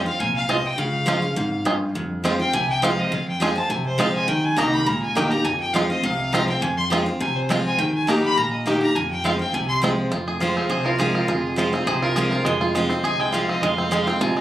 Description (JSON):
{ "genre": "bluegrass", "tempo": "206 BPM", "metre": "4/4", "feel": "swing 53% on 8ths", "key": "F minor", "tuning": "A4 = 440 Hz", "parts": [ { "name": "clear fiddle", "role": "melody", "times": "0.0-14.4 s", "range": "Ab4 to C6", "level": "-24 LUFS", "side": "left 1 dB", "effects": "plate reverb" }, { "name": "picked steel-string acoustic guitar", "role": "accompaniment", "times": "0.0-14.4 s", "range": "F2 to G4", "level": "-23 LUFS", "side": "equal", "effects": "none" }, { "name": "upright bass", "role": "bass", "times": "0.0-14.4 s", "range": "F1 to F2", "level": "-30 LUFS", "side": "equal", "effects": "none" }, { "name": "bluegrass banjo", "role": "melody", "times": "0.5-14.4 s", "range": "Ab3 to Ab4", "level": "-25 LUFS", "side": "right 2 dB", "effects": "plate reverb" } ], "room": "moderate studio reverb, RT60 0.5 s", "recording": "recorded on a phone in the room, club reverb, compression", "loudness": "-19 LUFS", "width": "side -13 dB against mid", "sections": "0.8-10.1 A section; 10.1-14.4 B section", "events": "fiddle solo 0.0-10.1", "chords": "0.0 Fm; 0.8 Db; 2.0 Fm; 4.3 Eb; 5.5 Fm; 7.8 Eb; 9.0 Fm", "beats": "0.20 0.49 | 0.78 1.08 1.37 1.66 | 1.95 2.24 2.54 2.83 | 3.12 3.41 3.70 3.99 | 4.29 4.58 4.87 5.16 | 5.45 5.74 6.04 6.33 | 6.62 6.91 7.20 7.49 | 7.78 8.08 8.37 8.66 | 8.95 9.24 9.54 9.83 | 10.12 10.41 10.70 11.00 | 11.29 11.58 11.87 12.17 | 12.46 12.75 13.04 13.34 | 13.63 13.92 14.21" }